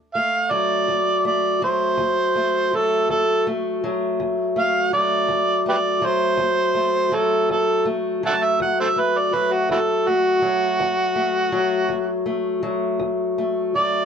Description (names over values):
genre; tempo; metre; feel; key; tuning
acoustic country blues, solo or duo; 54 BPM (dotted quarters); 12/8; straight; D mixolydian; A4 = 440 Hz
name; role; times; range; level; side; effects
fingerpicked steel-string acoustic guitar; accompaniment; 0.0-14.1 s; D2 to A3; -22 LUFS; left 3 dB; none
overdriven harmonica; melody; 0.1-14.1 s; E4 to A5; -19 LUFS; right 2 dB; plate reverb
room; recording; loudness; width
moderate booth ambience, RT60 0.2 s; none; -18 LUFS; side -7 dB against mid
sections
0.0-14.1 A section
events
none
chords
0.0 D